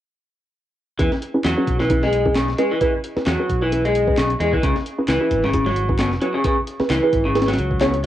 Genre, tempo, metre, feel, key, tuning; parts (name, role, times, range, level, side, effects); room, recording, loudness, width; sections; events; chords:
breakbeat, breaks; 132 BPM; 4/4; swing 56% on 16ths; A4 = 435 Hz
electric guitar through a small old amp; riff; 1.0-7.9 s; B2 to G#3; -20 LUFS; equal; vintage 12-bit sampler grit, cassette tape, analog delay
filtered dub chord stab; stabs; 1.0-8.0 s; C#4 to C#5; -24 LUFS; right 2 dB; phaser, cassette tape, analog delay
fingered electric bass; bass; 1.0-8.1 s; G#1 to E2; -24 LUFS; equal; tube saturation
breakbeat sampler-style drum kit; drums; 1.0-8.1 s; hi-hat, kick drum, snare drum; -23 LUFS; equal; cassette tape
electronic handclaps; drums; 1.4-7.9 s; -32 LUFS; equal; overdrive, cassette tape
moderate small room reverb, RT60 0.5 s; home recording on cassette; -17 LUFS; side -12 dB against mid
1.0-8.1 A section
filter sweep on synth stab 1.0-8.1
1.0 E6; 4.6 C#m7